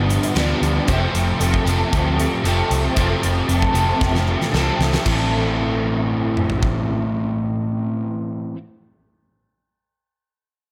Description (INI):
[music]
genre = rock, shoegaze and dream pop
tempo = 115 BPM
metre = 4/4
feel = straight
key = A minor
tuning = A4 = 444 Hz
[part]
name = picked twelve-string acoustic guitar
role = arpeggios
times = 0.0-5.8 s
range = F4 to C5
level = -30 LUFS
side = equal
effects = ensemble chorus, slapback echo
[part]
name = overdriven electric guitar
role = riff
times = 0.0-8.6 s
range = F2 to E4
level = -26 LUFS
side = equal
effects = reverse reverb
[part]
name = overdriven semi-hollow guitar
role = riff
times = 0.0-8.6 s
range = F2 to E4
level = -26 LUFS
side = equal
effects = ensemble chorus
[part]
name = vintage muted fingered electric bass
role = bass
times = 0.0-8.3 s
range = F1 to D2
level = -24 LUFS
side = equal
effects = none
[part]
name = huge arena drum kit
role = drums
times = 0.1-6.7 s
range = crash cymbal, hi-hat, kick drum, snare drum, toms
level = -27 LUFS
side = equal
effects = none
[sound]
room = light reverb, small room ambience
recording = none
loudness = -20 LUFS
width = mono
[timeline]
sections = 0.0-5.1 A section; 5.1-9.2 B section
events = drum fill 4.0-5.1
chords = 0.0 G7; 0.9 F; 5.1 Am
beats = 0.35 | 0.88 1.40 1.92 2.44 | 2.96 3.49 4.01 4.53 | 5.05 5.58 6.10 6.62 | 7.15 7.67 8.20